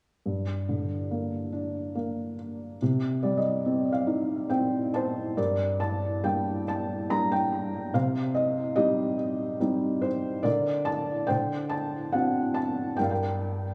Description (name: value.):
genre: classical, lyrical solo piano.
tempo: 71 BPM.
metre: 3/4.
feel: rubato.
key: G minor.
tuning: A4 = 438 Hz.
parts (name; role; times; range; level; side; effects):
felt-muted upright piano; solo; 0.3-13.7 s; G2 to Bb5; -28 LUFS; equal; tape echo.
room: moderate spring reverb, RT60 2.6 s.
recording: small room reverb.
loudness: -28 LUFS.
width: mono.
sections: 0.3-5.4 A section; 5.4-13.7 B section.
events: felt piano fill 2.8-5.4.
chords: 0.3 Gm; 2.8 Cm; 5.4 Gm; 7.9 Cm; 10.4 Bbmaj7/D; 11.3 D7; 13.0 Gm.